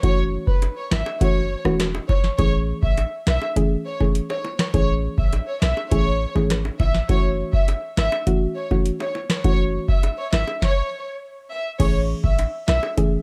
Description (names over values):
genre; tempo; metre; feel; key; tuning
dancehall; 102 BPM; 4/4; straight; F# minor; A4 = 440 Hz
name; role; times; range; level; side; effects
warm studio violin section; melody; 0.0-12.8 s; B4 to E5; -29 LUFS; equal; tape echo
soft round pluck; accompaniment; 0.0-13.2 s; E3 to G#4; -26 LUFS; equal; chorus
punchy sub bass; bass; 0.0-12.8 s; E1 to B1; -26 LUFS; equal; none
booming analog drum machine; drums; 0.0-13.2 s; crash cymbal, hi-hat, kick drum, rim click, snare drum; -23 LUFS; equal; none
bongos; percussion; 0.6-13.0 s; none; -36 LUFS; equal; none
room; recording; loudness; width
light reverb; dark, warm production; -21 LUFS; mono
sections
0.0-11.8 A section; 11.8-13.2 A section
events
stop 10.6-11.8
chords
0.0 F#m7; 2.4 Amaj7; 7.1 F#m7; 11.8 Amaj7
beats
| 0.03 0.62 1.21 1.80 | 2.39 2.98 3.56 4.15 | 4.74 5.33 5.92 6.50 | 7.09 7.68 8.27 8.86 | 9.45 10.03 10.62 11.21 | 11.80 12.39 12.97